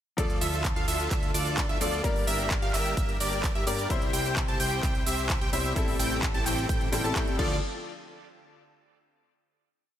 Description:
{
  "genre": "EDM, festival progressive house",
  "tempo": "129 BPM",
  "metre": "4/4",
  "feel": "straight",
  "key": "D minor",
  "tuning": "A4 = 439 Hz",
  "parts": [
    { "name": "clear grand piano", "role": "accompaniment", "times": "0.2-7.6 s", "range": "F3 to C5", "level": "-35 LUFS", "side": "left 5 dB", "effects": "sidechain pumping, ping-pong delay" },
    { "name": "lush unison pad", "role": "sustained chords", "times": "0.2-7.6 s", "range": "C3 to A4", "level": "-39 LUFS", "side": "equal", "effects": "chorus, sidechain pumping" },
    { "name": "plucky unison lead", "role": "arpeggios", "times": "0.2-7.6 s", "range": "D5 to A5", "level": "-33 LUFS", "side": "equal", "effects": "sidechain pumping, ping-pong delay" },
    { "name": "dense compressed supersaw", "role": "riff", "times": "0.2-7.6 s", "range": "C4 to A5", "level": "-34 LUFS", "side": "equal", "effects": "sidechain pumping, ping-pong delay" },
    { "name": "fat analog bass", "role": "bass", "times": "0.2-7.6 s", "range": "G1 to A2", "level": "-34 LUFS", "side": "equal", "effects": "sidechain pumping" },
    { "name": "big-room dance drum kit", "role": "drums", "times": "0.2-7.5 s", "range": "crash cymbal, handclaps, hi-hat, ride cymbal, shaker", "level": "-33 LUFS", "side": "right 2 dB", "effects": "studio ambience" },
    { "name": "electronic kick drum", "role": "drums", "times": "0.2-7.5 s", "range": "none", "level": "-29 LUFS", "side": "equal", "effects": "studio ambience" }
  ],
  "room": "little or no reverb",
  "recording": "none",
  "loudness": "-25 LUFS",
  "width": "side -11 dB against mid",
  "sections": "0.2-7.6 drop; 7.6-9.5 final hit",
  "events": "drop 0.2-7.6",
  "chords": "0.2 Dm; 2.0 Gm; 3.9 C; 5.8 Am7; 7.4 Dm; 7.6 N.C."
}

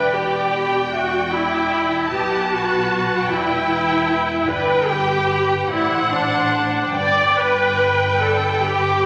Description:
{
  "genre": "classical, slow romantic movement for string orchestra",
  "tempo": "47-51 BPM (dotted quarters)",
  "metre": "6/8",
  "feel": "rubato",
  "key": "G major from 4.5 s",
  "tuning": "A4 = 440 Hz",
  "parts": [
    { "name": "warm symphonic violin section", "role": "melody", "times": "0.0-9.1 s", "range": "F#5 to A5", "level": "-26 LUFS", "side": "equal", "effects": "none" },
    { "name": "warm symphonic violin section", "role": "second line", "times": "0.0-9.1 s", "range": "B4 to D6", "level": "-29 LUFS", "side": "equal", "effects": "none" },
    { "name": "rich symphonic viola section", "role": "accompaniment", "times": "0.0-9.1 s", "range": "D4 to D5", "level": "-21 LUFS", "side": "equal", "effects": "none" },
    { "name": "rich symphonic double bass section", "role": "bass", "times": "0.0-9.1 s", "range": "E1 to B1", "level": "-32 LUFS", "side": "equal", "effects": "none" },
    { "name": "warm symphonic cello section", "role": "bass", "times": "0.0-9.1 s", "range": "E2 to B2", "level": "-34 LUFS", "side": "equal", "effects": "none" }
  ],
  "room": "wet scoring stage reverb, RT60 1.6 s",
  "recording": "none",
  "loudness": "-19 LUFS",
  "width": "mono",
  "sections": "0.0-9.1 A section",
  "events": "none",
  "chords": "0.0 Em7; 2.1 B7(no3); 3.3 Em; 4.5 G; 5.7 D7/A; 6.9 G"
}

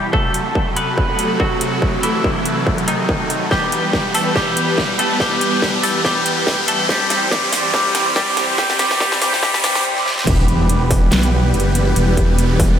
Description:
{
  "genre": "heavy wobble dubstep",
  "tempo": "142 BPM",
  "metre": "4/4",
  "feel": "swing 55% on 16ths, half-time",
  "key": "E harmonic minor",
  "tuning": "A4 = 440 Hz",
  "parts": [
    { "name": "clean electric guitar", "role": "melody", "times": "0.0-9.8 s", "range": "D#3 to B4", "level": "-20 LUFS", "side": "equal", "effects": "wide subtle chorus, analog delay" },
    { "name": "supersaw chords", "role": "sustained chords", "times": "0.0-12.8 s", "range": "C3 to C5", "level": "-21 LUFS", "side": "equal", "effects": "phaser, sidechain pumping" },
    { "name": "riser and impact", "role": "sound effects", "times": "0.0-12.0 s", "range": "none", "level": "-22 LUFS", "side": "equal", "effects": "none" },
    { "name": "electronic kick drum", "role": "drums", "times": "0.1-12.7 s", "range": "none", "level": "-20 LUFS", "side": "equal", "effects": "distortion" },
    { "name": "dubstep drum kit", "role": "drums", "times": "0.3-12.7 s", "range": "crash cymbal, handclaps, hi-hat, snare drum", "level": "-23 LUFS", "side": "equal", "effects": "high-pass filter on hats, high-pass filter on snare, high-pass filter on cymbals" },
    { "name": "wobble bass", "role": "bass", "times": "10.3-12.8 s", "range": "E1 to B1", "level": "-16 LUFS", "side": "equal", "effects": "chorus, overdrive" }
  ],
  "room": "wet huge ambient reverb, RT60 5.0 s",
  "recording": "dreamy mix soaked in reverb, high-pass filter",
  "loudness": "-14 LUFS",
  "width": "side -9 dB against mid",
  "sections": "0.0-10.3 A section; 10.3-12.8 B section",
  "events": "build-up 0.0-10.3; riser 0.0-9.8; filter sweep 0.0-10.3; drum fill 3.5-9.8, 10.0-10.3; break 9.8-10.3; drop 10.3-12.8; impact 10.3-12.0",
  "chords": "0.1 F#dim; 3.5 Em; 6.9 C; 10.3 Em"
}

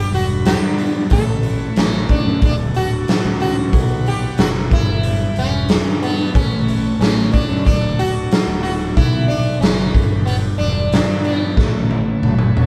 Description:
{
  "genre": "psychedelic rock",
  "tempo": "92 BPM",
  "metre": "4/4",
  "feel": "straight",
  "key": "unclear",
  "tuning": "A4 = 443 Hz",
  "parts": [
    { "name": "sitar", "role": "melody", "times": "0.0-12.5 s", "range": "B3 to A4", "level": "-26 LUFS", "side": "equal", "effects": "none" },
    { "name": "bright tonewheel organ", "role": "sustained chords", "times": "0.0-12.7 s", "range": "A4 to B5", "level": "-37 LUFS", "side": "equal", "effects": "overdrive, slow rotary speaker" },
    { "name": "twelve-string electric guitar", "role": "riff", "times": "0.0-12.7 s", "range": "D2 to F#4", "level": "-25 LUFS", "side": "equal", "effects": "phaser" },
    { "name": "fuzz picked electric bass", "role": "bass", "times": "0.0-12.7 s", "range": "D1 to G2", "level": "-24 LUFS", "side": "equal", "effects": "overdrive" },
    { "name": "raw garage drum kit", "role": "drums", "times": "0.1-12.7 s", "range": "hi-hat, kick drum, snare drum, toms", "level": "-19 LUFS", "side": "equal", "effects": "none" }
  ],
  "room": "moderate studio reverb, RT60 0.5 s",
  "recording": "band playing live in one room",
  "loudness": "-17 LUFS",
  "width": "mono",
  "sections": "0.0-12.7 A section",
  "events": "drum fill 11.6-12.7",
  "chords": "0.0 G; 1.1 Aadd9; 2.4 D; 3.7 Bm; 4.7 G; 6.3 Aadd9; 7.7 D; 9.0 Bm; 9.9 G; 11.6 Aadd9"
}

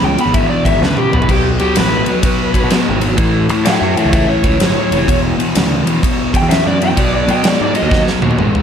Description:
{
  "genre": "blues rock power trio and southern rock",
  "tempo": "127 BPM",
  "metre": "4/4",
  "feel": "swing 65% on 8ths",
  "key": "E mixolydian",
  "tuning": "A4 = 438 Hz",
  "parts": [
    { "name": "overdriven slide guitar", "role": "melody", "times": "0.0-8.0 s", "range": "G4 to B5", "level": "-17 LUFS", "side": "left 1 dB", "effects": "slapback echo, plate reverb" },
    { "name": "crunchy overdriven guitar", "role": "riff", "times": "0.0-8.6 s", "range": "E2 to G#3", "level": "-16 LUFS", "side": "left 1 dB", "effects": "none" },
    { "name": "fuzz picked electric bass", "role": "bass", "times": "0.0-8.5 s", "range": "E1 to B2", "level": "-19 LUFS", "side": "equal", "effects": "overdrive" },
    { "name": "huge arena drum kit", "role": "drums", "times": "0.2-8.6 s", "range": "crash cymbal, kick drum, ride cymbal, snare drum, toms", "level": "-16 LUFS", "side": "equal", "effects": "none" }
  ],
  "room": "moderate club ambience, RT60 0.5 s",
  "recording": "none",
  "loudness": "-11 LUFS",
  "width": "side -8 dB against mid",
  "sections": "0.0-8.6 A section",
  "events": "electric slide guitar solo 0.0-8.6; drum fill 0.8-1.3, 7.9-8.6",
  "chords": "0.0 E; 1.3 B5; 3.2 A; 5.1 E5; 7.0 B"
}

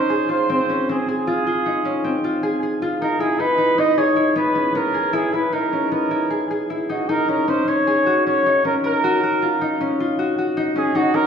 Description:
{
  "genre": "contemporary instrumental, chamber music in an uneven meter",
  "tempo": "155 BPM",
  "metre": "5/4",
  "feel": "straight",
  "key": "unclear",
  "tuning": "A4 = 440 Hz",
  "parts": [
    { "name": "warm flugelhorn", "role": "melody", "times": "0.0-11.3 s", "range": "Gb4 to D#5", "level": "-20 LUFS", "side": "right 2 dB", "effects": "none" },
    { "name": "concert harp", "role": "arpeggios", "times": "0.0-11.3 s", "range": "B3 to Bb4", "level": "-20 LUFS", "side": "left 1 dB", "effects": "none" }
  ],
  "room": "wet recital hall reverb, RT60 1.3 s",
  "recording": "heard from further back in the room",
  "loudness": "-17 LUFS",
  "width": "side -7 dB against mid",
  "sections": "0.0-11.3 A section",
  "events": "none",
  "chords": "0.0 Dbmaj7; 3.2 Emaj7#11; 7.1 Ebm9"
}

